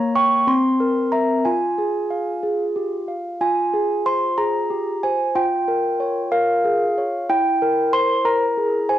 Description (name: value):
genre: classical, lullaby for handbells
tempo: 62 BPM (dotted quarters)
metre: 6/8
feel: straight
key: F minor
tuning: A4 = 440 Hz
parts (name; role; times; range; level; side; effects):
- handbells; solo; 0.0-9.0 s; Bb3 to Db6; -18 LUFS; equal; cassette tape
room: light reverb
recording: home recording on cassette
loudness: -18 LUFS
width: side -12 dB against mid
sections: 0.0-3.4 A section; 3.4-9.0 A section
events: none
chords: 0.5 C7; 1.5 Fm; 5.4 Gm7b5/F; 7.3 C7/E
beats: 0.47 | 1.45 2.43 | 3.42 4.38 | 5.35 6.32 | 7.29 8.25